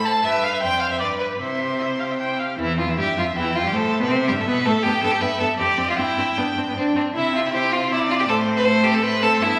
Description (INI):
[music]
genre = quick classical-period movement for string quartet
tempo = 158 BPM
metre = 3/4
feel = rubato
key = C major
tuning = A4 = 439 Hz
[part]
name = rich violin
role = melody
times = 0.0-9.6 s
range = A4 to A5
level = -27 LUFS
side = equal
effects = none
[part]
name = clear violin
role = second line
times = 0.0-9.6 s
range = C4 to D5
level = -24 LUFS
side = equal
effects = none
[part]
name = rich viola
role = accompaniment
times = 0.0-9.6 s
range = E3 to G5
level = -28 LUFS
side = equal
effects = none
[part]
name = rich cello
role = bass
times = 0.0-9.6 s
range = E2 to C3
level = -28 LUFS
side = equal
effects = none
[sound]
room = wet recital hall reverb, RT60 1.4 s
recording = vinyl crackle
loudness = -21 LUFS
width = mono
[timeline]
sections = 0.0-2.6 A section; 2.6-9.6 A section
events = none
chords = 0.2 Em/G; 0.6 Dm7/F; 1.0 G; 1.4 C; 2.6 Em; 3.7 Am; 4.8 Em/G; 5.6 Dm7; 6.0 Gsus4; 6.8 G5; 7.1 C; 8.3 Am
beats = | 0.25 0.62 1.01 | 1.40 1.80 2.19 | 2.59 2.98 3.36 | 3.74 4.11 4.48 | 4.85 5.22 5.59 | 5.98 6.37 6.75 | 7.14 7.53 7.91 | 8.28 8.66 9.03 | 9.40